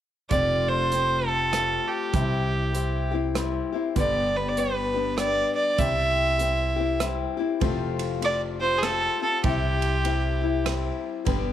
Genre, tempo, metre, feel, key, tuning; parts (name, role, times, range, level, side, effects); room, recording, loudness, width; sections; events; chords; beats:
honky-tonk and classic country; 99 BPM; 3/4; swing 62% on 8ths; F major; A4 = 440 Hz
bright fiddle; melody; 0.3-10.6 s; G4 to E5; -25 LUFS; right 1 dB
picked old ladder-braced acoustic guitar; accompaniment; 0.3-11.5 s; G2 to G4; -29 LUFS; left 9 dB
upright bass; bass; 0.3-11.5 s; F1 to C2; -28 LUFS; right 2 dB
natural country drum kit; drums; 0.3-11.4 s; hi-hat, kick drum, ride cymbal, rim click; -30 LUFS; right 4 dB
moderate spring reverb, RT60 2.1 s; 1960s-style stereo; -22 LUFS; side -11 dB against mid
0.3-7.6 A section; 7.6-11.5 B section
0.3 Fadd9; 2.1 C; 4.0 G; 5.8 C; 7.6 Fadd9; 9.4 C
| 0.32 0.92 1.53 | 2.14 2.75 3.36 | 3.97 4.58 5.18 | 5.79 6.40 7.01 | 7.62 8.23 8.83 | 9.44 10.05 10.66 | 11.27